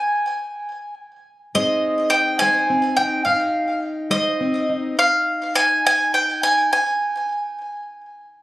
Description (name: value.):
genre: folk.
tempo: 70 BPM (dotted quarters).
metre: 6/8.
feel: straight.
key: Ab major.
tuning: A4 = 440 Hz.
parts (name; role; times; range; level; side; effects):
bowl-back mandolin; melody; 0.0-7.8 s; Eb5 to Ab5; -18 LUFS; equal; digital delay.
fingerpicked plugged-in steel-string acoustic guitar; accompaniment; 1.5-6.7 s; Ab2 to C5; -25 LUFS; left 2 dB; none.
room: light reverb.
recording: recorded on a phone in the room, studio ambience, compression.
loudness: -17 LUFS.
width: side -18 dB against mid.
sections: 0.0-1.6 A section; 1.6-8.4 B section.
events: none.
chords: 0.0 N.C.; 1.6 Ab; 5.0 N.C..